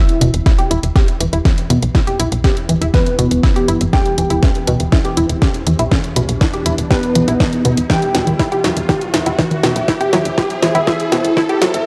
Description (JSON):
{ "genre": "melodic techno", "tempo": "121 BPM", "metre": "4/4", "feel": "straight", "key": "E minor", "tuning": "A4 = 441 Hz", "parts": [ { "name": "analog synth brass", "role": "melody", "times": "0.0-11.8 s", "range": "B3 to G4", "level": "-23 LUFS", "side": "equal", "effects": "chorus, sidechain pumping, analog delay" }, { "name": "glassy wavetable pluck", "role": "second line", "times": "0.0-11.8 s", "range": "B4 to G5", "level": "-28 LUFS", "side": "equal", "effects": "chorus, sidechain pumping, analog delay" }, { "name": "dark analog pad", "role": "sustained chords", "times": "1.9-11.9 s", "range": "E4 to E5", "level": "-31 LUFS", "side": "equal", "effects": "none" }, { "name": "tight sequenced synth", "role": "arpeggios", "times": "0.0-11.7 s", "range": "B2 to G4", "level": "-21 LUFS", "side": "equal", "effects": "chorus, phaser, cassette tape, sidechain pumping, analog delay" }, { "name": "tight sequencer bass", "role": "bass", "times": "0.0-11.8 s", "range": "E1 to E2", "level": "-23 LUFS", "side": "equal", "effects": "sidechain pumping" }, { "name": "analog drone", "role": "drone", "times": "0.2-11.9 s", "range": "E2", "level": "-32 LUFS", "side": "equal", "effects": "none" }, { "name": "riser", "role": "sound effects", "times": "3.9-11.9 s", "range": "none", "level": "-30 LUFS", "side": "equal", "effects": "none" }, { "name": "house drum kit", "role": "drums", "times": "0.1-11.8 s", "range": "congas, hi-hat, snare drum, woodblock", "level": "-22 LUFS", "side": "equal", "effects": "overdrive" }, { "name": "electronic kick drum", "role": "drums", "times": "0.5-11.5 s", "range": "none", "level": "-16 LUFS", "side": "equal", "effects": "overdrive" } ], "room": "light reverb, digital ambience", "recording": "dry, gritty hardware recording, transformer saturation, cassette tape, high-pass filter", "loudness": "-15 LUFS", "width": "mono", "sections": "0.0-11.9 A section", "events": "build-up 0.0-11.9; drum fill 0.0-11.9; filter sweep on analog polysynth 0.0-11.9; filter sweep 0.0-11.9; riser 3.9-11.9", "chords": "0.0 Em; 7.9 C/E", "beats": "0.46 0.96 1.45 | 1.95 2.44 2.94 3.44 | 3.93 4.43 4.92 5.42 | 5.92 6.41 6.91 7.40 | 7.90 8.39 8.89 9.39 | 9.88 10.38 10.87 11.37" }